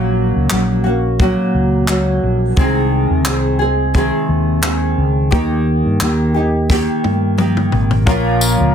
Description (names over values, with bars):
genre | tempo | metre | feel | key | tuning
acoustic pop | 87 BPM | 4/4 | swing 55% on 16ths | unclear | A4 = 443 Hz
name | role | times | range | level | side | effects
nylon-string guitar | accompaniment | 0.0-8.7 s | Bb2 to Ab4 | -16 LUFS | equal | double-tracked left and right
mellow fretless electric bass | bass | 0.0-8.7 s | Ab1 to G2 | -17 LUFS | equal | none
compact cocktail drum kit | drums | 0.5-8.6 s | handclaps, kick drum, snare drum, tambourine, toms | -18 LUFS | equal | none
bright upright piano | accompaniment | 8.1-8.7 s | F4 to Bb5 | -20 LUFS | left 5 dB | none
room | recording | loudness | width
moderate studio reverb, RT60 0.6 s | dense, heavily limited modern master | -13 LUFS | side -8 dB against mid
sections
0.0-8.1 A section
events
drum fill 6.7-8.1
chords
0.0 Gb/Bb; 2.6 Ab/C; 5.3 Eb; 8.1 Bbm